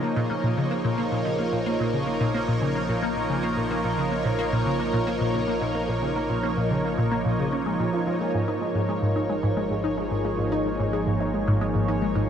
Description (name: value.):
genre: ambient, sequencer-driven space music.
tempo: 110 BPM.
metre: 4/4.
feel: straight.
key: Bb minor.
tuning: A4 = 439 Hz.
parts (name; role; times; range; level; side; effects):
lush unison pad; sustained chords; 0.0-12.3 s; F3 to Db5; -26 LUFS; right 1 dB; chorus, phaser.
resonant blip pluck; riff; 0.0-12.2 s; Ab2 to F4; -26 LUFS; equal; phaser, lush chorus, tape echo.
analog drone; bass; 0.8-12.3 s; Ab1 to Bb1; -38 LUFS; equal; chorus.
bubbling stepped-filter texture; texture; 0.0-12.3 s; Db5 to Eb5; -42 LUFS; left 3 dB; chorus, built-in reverb.
room: wet huge ambient reverb, RT60 8.0 s.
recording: in a vast, echoing space.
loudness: -22 LUFS.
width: side -8 dB against mid.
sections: 0.0-12.3 A section.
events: fade-in on synth drone 0.0-12.3; fade-in on synth texture 0.0-12.3.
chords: 0.0 Bbm; 8.3 Absus4.